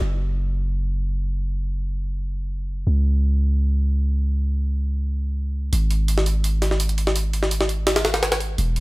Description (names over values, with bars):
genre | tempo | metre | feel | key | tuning
drum and bass, jungle | 168 BPM | 4/4 | straight | unclear | A4 = 440 Hz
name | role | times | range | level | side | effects
long sustained 808-style bass | bass | 0.0-8.8 s | E1 to C#2 | -21 LUFS | equal | tube saturation
jungle sampler-style drum kit | drums | 5.7-8.8 s | hi-hat, snare drum | -23 LUFS | equal | studio reverb
room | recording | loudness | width
digital ambience | none | -20 LUFS | side -22 dB against mid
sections
0.0-8.8 A section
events
none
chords
none